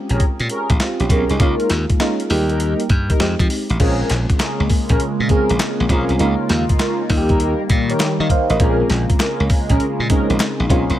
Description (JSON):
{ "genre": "R&B, new jack swing", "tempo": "100 BPM", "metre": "4/4", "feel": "swing 66% on 16ths", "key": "Bb dorian", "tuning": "A4 = 440 Hz", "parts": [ { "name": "FM electric piano with tremolo", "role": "accompaniment", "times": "0.0-11.0 s", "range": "G3 to F5", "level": "-22 LUFS", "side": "right 1 dB", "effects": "phaser" }, { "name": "mellow synth brass", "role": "stabs", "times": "0.1-10.9 s", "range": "Db4 to Bb4", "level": "-24 LUFS", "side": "equal", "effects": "chorus, phaser, tape echo" }, { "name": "glassy slap bass", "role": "bass", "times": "0.1-11.0 s", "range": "A1 to F3", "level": "-19 LUFS", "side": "equal", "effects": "none" }, { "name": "dusty soul sampler-style drum kit", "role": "drums", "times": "0.1-11.0 s", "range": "crash cymbal, hi-hat, kick drum, snare drum", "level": "-18 LUFS", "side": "equal", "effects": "none" }, { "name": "phased analog pad", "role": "sustained chords", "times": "4.3-11.0 s", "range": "Db3 to F4", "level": "-24 LUFS", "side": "equal", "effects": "phaser, chorus" }, { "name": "group handclap", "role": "percussion", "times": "4.4-10.6 s", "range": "none", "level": "-32 LUFS", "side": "left 5 dB", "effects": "none" } ], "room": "digital ambience", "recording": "none", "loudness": "-15 LUFS", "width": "side -12 dB against mid", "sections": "0.0-3.8 A section; 3.8-11.0 B section", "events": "none", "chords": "0.0 Bbm7; 1.4 Db6; 2.3 Eb; 3.2 Fm7; 3.8 Bbm7; 6.2 Db6; 7.1 Eb; 8.6 Bbm7" }